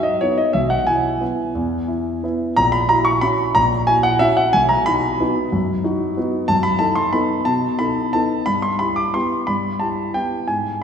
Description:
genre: classical, piano waltz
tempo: 169-198 BPM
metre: 3/4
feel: rubato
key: B major, E minor from 6.5 s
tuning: A4 = 443 Hz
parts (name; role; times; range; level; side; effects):
- warm concert grand piano; solo; 0.0-10.8 s; A#1 to D6; -16 LUFS; equal; none
room: wet concert hall reverb, RT60 2.3 s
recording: heard from further back in the room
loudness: -16 LUFS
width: side -7 dB against mid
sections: 0.0-10.8 A section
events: none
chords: 0.0 B; 0.5 E/B; 2.6 F#7/A#; 4.5 B; 6.5 B7/F#; 8.5 Em/G

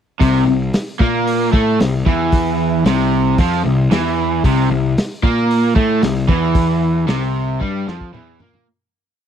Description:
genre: classic rock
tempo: 114 BPM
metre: 4/4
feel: straight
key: C mixolydian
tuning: A4 = 440 Hz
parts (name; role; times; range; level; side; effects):
- crunchy overdriven guitar; riff; 0.2-8.7 s; C3 to Bb3; -19 LUFS; right 11 dB; none
- raw garage guitar; riff; 0.2-8.7 s; C3 to Bb3; -19 LUFS; left 8 dB; overdrive
- fuzz picked electric bass; bass; 0.2-8.7 s; C2 to Bb2; -20 LUFS; equal; overdrive
- vintage drum kit; drums; 0.2-8.7 s; hi-hat, kick drum, snare drum, toms; -17 LUFS; equal; none
room: studio reverb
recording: dry, close 1970s-style studio recording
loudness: -14 LUFS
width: side -9 dB against mid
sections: 0.2-8.7 riff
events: fade-out 6.6-8.7; drum fill 7.6-8.7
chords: 0.2 C

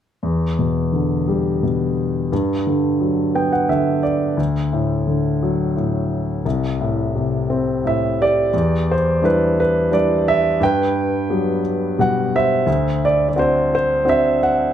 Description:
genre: folk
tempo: 87 BPM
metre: 3/4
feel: straight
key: E minor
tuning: A4 = 440 Hz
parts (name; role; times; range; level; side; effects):
- clear grand piano; melody; 0.2-14.7 s; C2 to G5; -16 LUFS; equal; none
room: moderate studio reverb, RT60 0.8 s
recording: none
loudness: -16 LUFS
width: side -10 dB against mid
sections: 0.2-8.5 A section; 8.5-14.7 B section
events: grand piano fill 3.0-4.4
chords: 0.2 Em7; 2.3 Gmaj7; 4.4 D; 6.5 Am/C; 8.5 Em7; 10.6 Gmaj7; 12.7 D7

